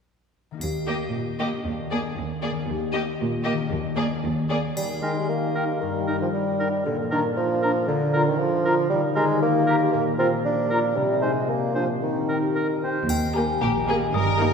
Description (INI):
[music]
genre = cinematic, playful, whimsical film cue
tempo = 116 BPM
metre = 2/4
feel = straight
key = Eb major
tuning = A4 = 439 Hz
[part]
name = concert harp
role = arpeggios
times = 0.5-14.5 s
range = G2 to Eb5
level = -28 LUFS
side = left 5 dB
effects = none
[part]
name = rich studio cello section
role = bass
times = 0.6-4.7, 13.1-14.5 s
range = Eb2 to Bb2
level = -30 LUFS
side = right 3 dB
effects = none
[part]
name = triangle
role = percussion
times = 0.6-1.6, 4.8-5.8, 13.1-14.1 s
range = none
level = -39 LUFS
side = left 2 dB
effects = none
[part]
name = rich studio violin section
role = melody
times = 0.9-4.6, 13.4-14.5 s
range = Bb4 to Eb5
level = -34 LUFS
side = left 4 dB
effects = none
[part]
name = rich studio violin section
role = second line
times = 0.9-4.6, 13.6-14.5 s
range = G4 to Bb4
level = -31 LUFS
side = left 1 dB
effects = none
[part]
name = rich studio viola section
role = accompaniment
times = 0.9-4.6, 13.4-14.5 s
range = Bb3 to G4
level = -30 LUFS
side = right 2 dB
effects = none
[part]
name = mellow bassoon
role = accompaniment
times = 4.8-12.8 s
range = D3 to D4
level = -24 LUFS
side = right 2 dB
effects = none
[part]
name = mellow French horn section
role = sustained chords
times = 4.8-12.8 s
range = C3 to Bb3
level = -28 LUFS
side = left 1 dB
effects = none
[part]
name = mellow hollow small flute group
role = second line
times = 5.0-12.9 s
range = G5 to Bb5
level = -32 LUFS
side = left 2 dB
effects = none
[part]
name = warm clarinet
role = second line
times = 5.0-12.9 s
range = D4 to G4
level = -33 LUFS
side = equal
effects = none
[part]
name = warm oboe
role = second line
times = 5.0-13.1 s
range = Bb4 to C5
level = -32 LUFS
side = right 1 dB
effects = none
[part]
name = glockenspiel with soft plastic mallets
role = melody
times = 13.1-14.5 s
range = G5 to Eb6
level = -27 LUFS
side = left 2 dB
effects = none
[part]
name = clear studio double bass section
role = bass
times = 13.1-14.5 s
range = G1 to Eb2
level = -28 LUFS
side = right 6 dB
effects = none
[sound]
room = wet church reverb, RT60 3.0 s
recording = recorded in a church or concert hall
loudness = -21 LUFS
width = side -6 dB against mid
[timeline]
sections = 0.6-4.8 A section; 4.8-13.1 B section; 13.1-14.5 B section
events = none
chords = 0.6 Eb; 1.7 Bb7/Eb; 2.7 Eb; 3.7 Bb7/Eb; 4.8 Eb; 5.8 Eb/G; 6.9 Bb; 7.9 Bb/D; 8.9 Eb; 9.9 Bb; 11.0 Ab/C; 11.5 Bb13; 12.0 Eb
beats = | 0.61 1.14 | 1.66 2.17 | 2.69 3.19 | 3.71 4.23 | 4.77 5.30 | 5.82 6.34 | 6.86 7.37 | 7.88 8.40 | 8.91 9.41 | 9.93 10.45 | 10.96 11.48 | 12.02 12.56 | 13.10 13.62 | 14.14